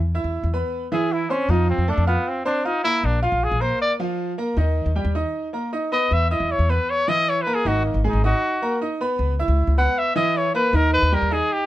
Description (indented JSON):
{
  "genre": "latin, Cuban son and guajira",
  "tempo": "156 BPM",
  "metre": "4/4",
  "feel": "straight",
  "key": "unclear",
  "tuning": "A4 = 444 Hz",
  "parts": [
    { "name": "upright bass", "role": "bass", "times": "0.0-11.4 s", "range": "G#1 to F2", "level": "-21 LUFS", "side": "equal", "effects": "none" },
    { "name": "bright grand piano", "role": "arpeggios", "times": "0.1-11.6 s", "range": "D#3 to F6", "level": "-24 LUFS", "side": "right 1 dB", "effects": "none" },
    { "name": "clear trumpet", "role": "melody", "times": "0.9-11.7 s", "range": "A#3 to F#5", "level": "-21 LUFS", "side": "left 1 dB", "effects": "none" }
  ],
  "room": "little or no reverb",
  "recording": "close, detailed microphones",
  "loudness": "-19 LUFS",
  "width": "side -14 dB against mid",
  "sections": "0.0-11.7 A section",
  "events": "trumpet solo 0.0-11.7",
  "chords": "0.0 E5; 1.5 F; 3.0 A#5; 4.6 D#; 6.1 E5; 7.7 G#madd9; 9.2 C#m7; 10.7 D#",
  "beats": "0.34 0.72 1.11 | 1.50 1.88 2.27 2.65 | 3.04 3.42 3.81 4.19 | 4.58 4.96 5.34 5.73 | 6.12 6.50 6.89 7.27 | 7.66 8.04 8.43 8.81 | 9.20 9.58 9.97 10.35 | 10.74 11.12 11.51"
}